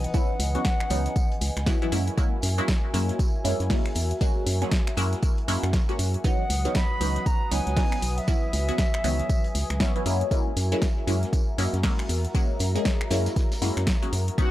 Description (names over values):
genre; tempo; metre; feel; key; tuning
deep house; 118 BPM; 4/4; swing 60% on 16ths; unclear; A4 = 440 Hz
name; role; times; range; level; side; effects
concert flute; melody; 0.0-1.9, 6.2-10.1 s; E5 to B5; -32 LUFS; equal; analog delay
dark analog pad; sustained chords; 0.0-14.5 s; E3 to D#6; -35 LUFS; left 1 dB; chorus, sidechain pumping
organ-like FM bass; bass; 0.0-14.3 s; B1 to F#2; -26 LUFS; equal; sidechain pumping
deep house drum kit; drums; 0.0-14.5 s; finger snaps, hi-hat, snare drum; -32 LUFS; equal; overdrive
filtered dub chord stab; stabs; 0.1-14.5 s; D#3 to G#4; -30 LUFS; equal; phaser, lush chorus, sidechain pumping, analog delay
electronic kick drum; drums; 0.1-14.5 s; none; -24 LUFS; equal; overdrive
warm soul drum kit; drums; 0.1-14.5 s; hi-hat, snare drum, tambourine; -43 LUFS; equal; none
string machine, violins; texture; 14.4-14.5 s; F#4 to F#5; -29 LUFS; left 2 dB; ensemble chorus, sidechain pumping
room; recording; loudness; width
little or no reverb; dry, gritty hardware recording; -22 LUFS; side -14 dB against mid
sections
0.0-14.5 A section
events
none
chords
0.0 C#m11; 1.9 F#9; 6.2 C#m11; 10.1 F#9